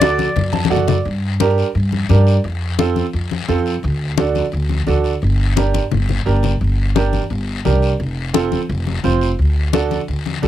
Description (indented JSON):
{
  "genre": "latin, cumbia",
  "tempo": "173 BPM",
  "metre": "4/4",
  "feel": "straight",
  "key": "G minor",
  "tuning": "A4 = 440 Hz",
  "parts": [
    { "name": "clear clarinet", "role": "melody", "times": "0.0-0.7 s", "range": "D5", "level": "-19 LUFS", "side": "left 1 dB", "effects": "cassette tape" },
    { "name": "bright upright piano", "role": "accompaniment", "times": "0.0-10.5 s", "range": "C4 to A5", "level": "-19 LUFS", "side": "right 6 dB", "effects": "cassette tape" },
    { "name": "upright bass", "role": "bass", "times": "0.0-10.5 s", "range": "F1 to G2", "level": "-17 LUFS", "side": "equal", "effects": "none" },
    { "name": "congas", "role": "percussion", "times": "0.0-10.5 s", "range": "none", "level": "-21 LUFS", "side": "left 8 dB", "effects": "none" },
    { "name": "guiro", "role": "percussion", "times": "0.0-10.5 s", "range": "none", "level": "-31 LUFS", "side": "left 10 dB", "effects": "none" }
  ],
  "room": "moderate booth ambience, RT60 0.2 s",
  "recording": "home recording on cassette",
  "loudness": "-15 LUFS",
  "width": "side -12 dB against mid",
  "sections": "0.0-1.1 A section; 1.1-10.5 B section",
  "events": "upright piano fill 0.4-1.1; drum fill 0.5-1.1, 5.7-6.6",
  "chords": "0.0 D; 1.1 Gm; 2.4 F; 3.8 D; 5.2 Gm; 8.0 F; 9.4 D",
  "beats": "0.01 0.36 0.71 | 1.05 1.40 1.75 2.09 | 2.44 2.79 3.13 3.48 | 3.83 4.18 4.52 4.87 | 5.22 5.57 5.91 6.26 | 6.61 6.95 7.30 7.65 | 8.00 8.34 8.69 9.04 | 9.39 9.73 10.08 10.43"
}